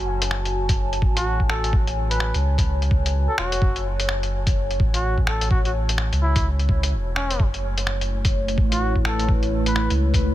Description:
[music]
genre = future garage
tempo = 127 BPM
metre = 4/4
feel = swing 60% on 16ths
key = F# minor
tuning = A4 = 440 Hz
[part]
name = dark analog pad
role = sustained chords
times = 0.0-10.3 s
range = A3 to A5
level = -28 LUFS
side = equal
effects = chorus, phaser, sidechain pumping
[part]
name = warm sub bass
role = bass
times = 0.0-10.3 s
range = E1 to C#2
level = -23 LUFS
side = equal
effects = tube saturation, sidechain pumping
[part]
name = lo-fi sampler-style drum kit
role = drums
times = 0.2-10.2 s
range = finger snaps, hi-hat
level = -27 LUFS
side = left 1 dB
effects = studio reverb
[part]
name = electronic kick drum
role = drums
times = 0.7-10.2 s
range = none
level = -21 LUFS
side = equal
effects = studio reverb
[part]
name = trumpet with cup mute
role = melody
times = 1.2-9.9 s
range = C#4 to B4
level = -29 LUFS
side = equal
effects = digital delay
[sound]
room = little or no reverb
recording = none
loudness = -19 LUFS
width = side -14 dB against mid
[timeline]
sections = 0.0-10.3 A section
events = none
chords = 0.0 F#m; 7.4 F#m7

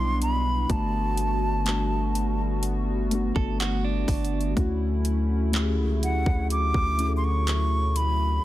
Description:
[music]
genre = contemporary R&B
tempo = 62 BPM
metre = 4/4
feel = straight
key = unclear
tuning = A4 = 440 Hz
[part]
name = hollow concert flute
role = melody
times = 0.0-8.4 s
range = F#5 to D6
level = -28 LUFS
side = right 1 dB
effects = tape echo
[part]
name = muted felt-like synth keys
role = accompaniment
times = 0.0-8.4 s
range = G3 to A4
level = -30 LUFS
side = left 3 dB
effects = chorus
[part]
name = hollow soft pad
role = sustained chords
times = 0.0-8.4 s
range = B2 to F#4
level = -33 LUFS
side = right 2 dB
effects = chorus
[part]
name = long sustained 808-style bass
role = bass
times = 0.0-8.4 s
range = G1 to D2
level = -26 LUFS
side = equal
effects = none
[part]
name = trap drum kit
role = drums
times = 0.2-8.2 s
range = handclaps, hi-hat, kick drum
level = -28 LUFS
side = equal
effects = overdrive
[part]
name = direct-recorded clean electric guitar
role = arpeggios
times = 3.4-4.5 s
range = D4 to A4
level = -33 LUFS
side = right 10 dB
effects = tape echo
[sound]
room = digital ambience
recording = dense, heavily limited modern master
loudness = -22 LUFS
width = side -14 dB against mid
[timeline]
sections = 0.0-8.4 A section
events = none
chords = 0.0 Cmaj9; 0.7 Gmaj9; 4.6 Dmaj9

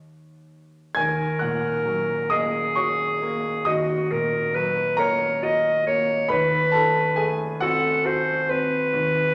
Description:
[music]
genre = classical, romantic duo for clarinet and grand piano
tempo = 45 BPM (dotted quarters)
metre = 12/8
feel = rubato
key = Eb minor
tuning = A4 = 441 Hz
[part]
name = warm grand piano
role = accompaniment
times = 0.0-9.3 s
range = Eb2 to Ab6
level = -27 LUFS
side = equal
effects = none
[part]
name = bright clarinet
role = melody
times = 1.0-9.3 s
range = Gb4 to Eb5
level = -25 LUFS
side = equal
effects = none
[sound]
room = wet recital hall reverb, RT60 1.7 s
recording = none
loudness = -23 LUFS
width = mono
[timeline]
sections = 1.0-9.3 A section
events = none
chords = 0.0 Ebm; 6.3 Ebdim7

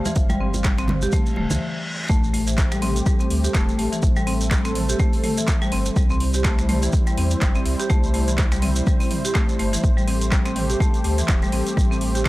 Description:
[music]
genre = afro house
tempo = 124 BPM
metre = 4/4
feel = swing 57% on 16ths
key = A minor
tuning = A4 = 441 Hz
[part]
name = warm analog pad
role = sustained chords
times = 0.0-12.3 s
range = G3 to F5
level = -29 LUFS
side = right 1 dB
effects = chorus, sidechain pumping
[part]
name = buzzing marimba with hard mallets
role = arpeggios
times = 0.0-12.3 s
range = E3 to G4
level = -25 LUFS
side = left 1 dB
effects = sidechain pumping, analog delay
[part]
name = deep house drum kit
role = drums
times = 0.1-12.3 s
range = finger snaps, handclaps, hi-hat, toms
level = -29 LUFS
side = equal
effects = overdrive
[part]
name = congas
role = percussion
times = 0.1-1.6 s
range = none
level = -28 LUFS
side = right 1 dB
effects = none
[part]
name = shekere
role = percussion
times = 0.1-12.2 s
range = none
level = -33 LUFS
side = right 2 dB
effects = none
[part]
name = warm sub bass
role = bass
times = 0.2-12.3 s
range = D1 to E2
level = -24 LUFS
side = equal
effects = tube saturation, sidechain pumping
[part]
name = electronic kick drum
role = drums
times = 0.2-12.3 s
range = none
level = -20 LUFS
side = equal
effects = overdrive
[part]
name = reverse cymbal and impact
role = sound effects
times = 1.3-4.0 s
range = none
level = -33 LUFS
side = equal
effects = none
[sound]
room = little or no reverb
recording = dry, gritty hardware recording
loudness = -18 LUFS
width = side -18 dB against mid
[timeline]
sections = 0.0-2.1 A section; 2.1-12.3 B section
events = reverse cymbal 1.3-2.1; stop 1.6-2.1; drop 2.1-12.3; impact 2.1-4.0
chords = 0.0 G7sus4; 2.1 Am7; 6.0 C; 9.8 Am7

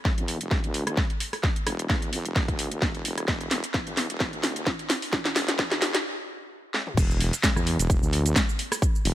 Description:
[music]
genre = bass house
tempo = 130 BPM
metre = 4/4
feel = swing 55% on 16ths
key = unclear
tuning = A4 = 442 Hz
[part]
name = electronic kick drum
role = drums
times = 0.1-8.9 s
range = none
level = -26 LUFS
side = equal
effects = overdrive
[part]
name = garage drum kit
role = drums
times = 0.1-9.1 s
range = crash cymbal, hi-hat, rim click, shaker, snare drum, toms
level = -27 LUFS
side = equal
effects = none
[part]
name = wobble bass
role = bass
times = 0.2-9.1 s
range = E1 to E2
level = -29 LUFS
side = equal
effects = chorus, tube saturation, sidechain pumping, high-pass filter
[sound]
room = light reverb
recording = high-pass filter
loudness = -23 LUFS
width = side -13 dB against mid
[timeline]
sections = 0.0-7.0 A section; 7.0-9.1 B section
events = build-up 0.0-7.0; drum fill 0.0-6.1, 6.7; filter sweep 0.0-7.0; stop 6.1-7.0; drop 7.0-9.1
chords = none

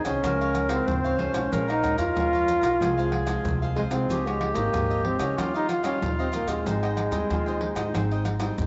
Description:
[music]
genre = samba and choro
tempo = 93 BPM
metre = 4/4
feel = straight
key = Ab major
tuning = A4 = 440 Hz
[part]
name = clear trombone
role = melody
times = 0.0-8.6 s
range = Ab3 to F4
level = -29 LUFS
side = equal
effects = none
[part]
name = bright baroque flute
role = second line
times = 0.0-8.7 s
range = Eb4 to C5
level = -34 LUFS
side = equal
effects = none
[part]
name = cavaquinho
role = accompaniment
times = 0.0-8.7 s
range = F4 to Bb5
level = -39 LUFS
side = equal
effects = none
[part]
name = nylon-string guitar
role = accompaniment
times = 0.0-8.7 s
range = F2 to F4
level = -37 LUFS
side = equal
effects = none
[part]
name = maracas, pandeiro, tamborim and surdo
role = percussion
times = 0.0-8.7 s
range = none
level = -34 LUFS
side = equal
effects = none
[part]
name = upright bass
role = bass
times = 0.1-8.7 s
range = Ab1 to Db3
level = -33 LUFS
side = equal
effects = none
[sound]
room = moderate plate reverb, RT60 3.7 s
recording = nothing above 7.9 kHz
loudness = -25 LUFS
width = mono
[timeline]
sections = 0.0-8.7 A section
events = none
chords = 0.2 Dbmaj7; 1.5 Bbm7; 2.8 Fm/C; 4.1 Dbadd9; 5.4 Ebadd9; 6.7 Abmaj7

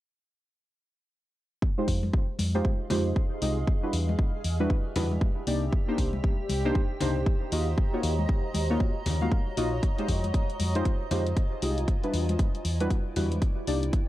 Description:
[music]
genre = deep house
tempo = 117 BPM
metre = 4/4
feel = swing 61% on 16ths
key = unclear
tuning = A4 = 442 Hz
[part]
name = electronic kick drum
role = drums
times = 1.6-14.1 s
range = none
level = -26 LUFS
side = equal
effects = none
[part]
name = granular cloud pad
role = texture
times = 2.8-14.1 s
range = E4 to Bb5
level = -36 LUFS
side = right 1 dB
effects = built-in reverb, sidechain pumping
[part]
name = deep mellow chord stab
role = stabs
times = 1.8-13.8 s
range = G3 to F5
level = -31 LUFS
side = equal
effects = chorus, sidechain pumping, analog delay
[part]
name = fingered electric bass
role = bass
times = 1.9-13.9 s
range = Bb1 to F2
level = -29 LUFS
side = equal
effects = sidechain pumping
[part]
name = electronic hi-hat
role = drums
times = 1.9-14.1 s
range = none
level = -38 LUFS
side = left 3 dB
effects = none
[part]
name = congas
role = percussion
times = 2.0-13.4 s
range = none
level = -36 LUFS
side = left 2 dB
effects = none
[sound]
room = little or no reverb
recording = cassette tape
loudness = -25 LUFS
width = side -15 dB against mid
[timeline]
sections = 1.6-14.1 A section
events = none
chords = 1.6 Fm7; 3.7 Em7; 5.5 Cm7; 7.5 Ebm7; 9.8 Fm7; 11.9 Em7

